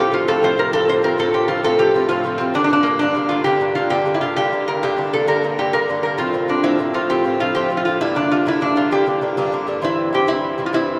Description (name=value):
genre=celtic folk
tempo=132 BPM (dotted quarters)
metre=12/8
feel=straight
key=G dorian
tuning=A4 = 440 Hz
part: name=metal-body resonator slide guitar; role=melody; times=0.0-11.0 s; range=Bb3 to C5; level=-20 LUFS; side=equal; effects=none
part: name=Irish bouzouki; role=accompaniment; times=0.0-11.0 s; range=G2 to F4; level=-24 LUFS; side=equal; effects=none
room=wet cathedral reverb, RT60 6.5 s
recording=in a vast, echoing space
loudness=-18 LUFS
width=mono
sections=0.0-9.8 A section; 9.8-11.0 B section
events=none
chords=0.0 F; 2.5 Gm; 6.2 F; 8.0 Gm; 9.8 C